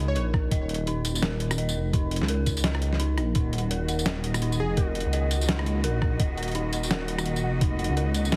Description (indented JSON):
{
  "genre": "half-time drum and bass",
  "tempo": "169 BPM",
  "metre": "4/4",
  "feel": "swing 60% on 16ths, half-time",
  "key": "Eb minor",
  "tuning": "A4 = 440 Hz",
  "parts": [
    { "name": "dark detuned synth bell", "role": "arpeggios", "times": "0.0-8.4 s", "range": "Eb4 to Eb5", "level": "-35 LUFS", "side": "equal", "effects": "chorus, digital delay" },
    { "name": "dark detuned saw bass", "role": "bass", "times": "0.0-8.4 s", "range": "Eb1 to Db2", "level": "-29 LUFS", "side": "equal", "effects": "none" },
    { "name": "plucky unison lead", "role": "melody", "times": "0.1-0.2, 4.6-4.9 s", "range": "Ab4 to Db5", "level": "-38 LUFS", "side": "equal", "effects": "cassette tape, digital delay" },
    { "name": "boom bap sampler-style drum kit", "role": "drums", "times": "0.2-8.4 s", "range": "hi-hat, rim click, snare drum, tambourine", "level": "-32 LUFS", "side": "equal", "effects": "none" },
    { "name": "electronic kick drum", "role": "drums", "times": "0.3-7.7 s", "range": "none", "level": "-28 LUFS", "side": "equal", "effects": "none" },
    { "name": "pulsing gated texture", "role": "texture", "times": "3.3-8.4 s", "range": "Gb5", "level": "-43 LUFS", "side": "equal", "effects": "chorus, built-in reverb" },
    { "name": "rich studio cello section", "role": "sustained chords", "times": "3.4-8.4 s", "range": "Eb3 to Eb5", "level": "-37 LUFS", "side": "equal", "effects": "sidechain pumping" }
  ],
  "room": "light reverb, digital ambience",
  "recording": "heavily compressed radio sound, multiband compression",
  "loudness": "-26 LUFS",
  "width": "mono",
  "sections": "0.0-8.4 A section",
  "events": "kick drops out 2.6-3.4",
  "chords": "0.0 Ebm"
}